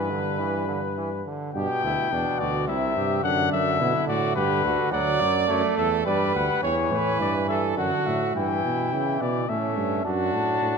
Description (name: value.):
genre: classical, imitative canzona for brass ensemble.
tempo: 106 BPM.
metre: 3/4.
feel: straight.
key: G major.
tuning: A4 = 440 Hz.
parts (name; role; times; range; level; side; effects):
warm trumpet; melody; 0.0-10.8 s; B4 to A5; -27 LUFS; left 9 dB; none.
clear trumpet; second line; 0.0-10.8 s; C#4 to D5; -27 LUFS; right 6 dB; none.
brilliant trombone; accompaniment; 0.0-10.8 s; B2 to D4; -29 LUFS; right 2 dB; none.
clear bass trombone; bass; 0.0-10.7 s; C2 to C#3; -28 LUFS; right 2 dB; none.
room: moderate concert hall reverb, RT60 2.0 s.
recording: dark, warm production.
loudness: -22 LUFS.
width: side -5 dB against mid.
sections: 0.0-1.5 A section; 1.5-8.4 B section; 8.4-10.8 A section.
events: none.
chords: 0.0 G; 2.7 C; 3.2 D/F#; 4.4 G; 4.9 D; 6.1 G; 6.6 A/E; 7.8 D/F#; 8.4 Em/G; 9.5 A; 10.1 D/F#.